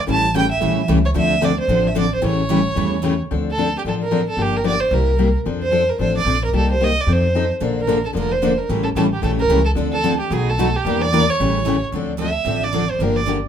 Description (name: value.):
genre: acoustic string swing (jazz manouche).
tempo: 223 BPM.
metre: 4/4.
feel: swing 58% on 8ths.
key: D minor.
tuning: A4 = 440 Hz.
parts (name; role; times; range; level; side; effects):
rich violin; melody; 0.0-13.3 s; G4 to A5; -20 LUFS; right 3 dB; none.
picked steel-string acoustic guitar; accompaniment; 0.1-13.4 s; B2 to A4; -22 LUFS; left 6 dB; none.
picked steel-string acoustic guitar; accompaniment; 0.1-3.1, 7.6-13.4 s; B2 to B4; -23 LUFS; right 4 dB; none.
upright bass; bass; 0.1-13.4 s; F1 to F2; -22 LUFS; equal; none.
room: moderate club reverb, RT60 0.6 s.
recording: minimal, uncompressed stereo recording.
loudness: -16 LUFS.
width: side -8 dB against mid.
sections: 0.0-3.3 A section; 3.3-11.9 B section; 11.9-13.5 C section.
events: violin solo 11.9-13.5.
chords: 0.1 A7; 1.2 Dm7; 2.2 A7; 3.3 Dm7; 4.4 Gm7; 4.9 C7; 5.5 F6; 6.5 Cm7; 7.1 F7; 7.6 Bbmaj7; 8.7 A7; 9.8 Dm7; 10.3 B7; 10.9 Em7b5; 11.4 A7; 11.9 Dm7.